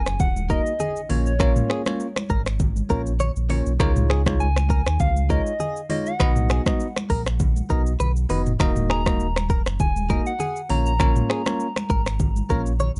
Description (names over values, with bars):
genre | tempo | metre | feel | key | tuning
afrobeats | 100 BPM | 4/4 | swing 55% on 16ths | Eb minor | A4 = 440 Hz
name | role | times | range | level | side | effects
soft struck synth lead | melody | 0.0-13.0 s | Db5 to Bb5 | -31 LUFS | equal | chorus, tape echo
sub bass with octave | bass | 0.0-13.0 s | Eb1 to Eb2 | -25 LUFS | equal | none
impact | sound effects | 0.1-1.4 s | none | -48 LUFS | equal | none
afro-pop drum kit | drums | 0.1-13.0 s | finger snaps, hi-hat, kick drum, rim click, shaker, toms | -26 LUFS | equal | none
congas | percussion | 0.2-12.9 s | none | -34 LUFS | equal | none
bell-like tine electric piano | accompaniment | 0.5-12.7 s | Ab3 to Eb5 | -29 LUFS | equal | none
direct-recorded clean electric guitar | riff | 0.5-12.9 s | Ab4 to Db5 | -31 LUFS | equal | analog chorus, tape echo
room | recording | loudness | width
little or no reverb | dark, warm production, nothing above 10.8 kHz | -22 LUFS | mono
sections
0.0-13.0 A section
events
impact 0.0-1.4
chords
0.0 Ebm; 1.1 Bbm; 3.8 Dbadd9; 6.2 B; 8.6 Ebm; 10.7 Bbm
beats
0.20 0.80 | 1.40 2.00 2.60 3.20 | 3.80 4.40 5.00 5.60 | 6.20 6.80 7.40 8.00 | 8.60 9.20 9.80 10.40 | 11.00 11.60 12.20 12.80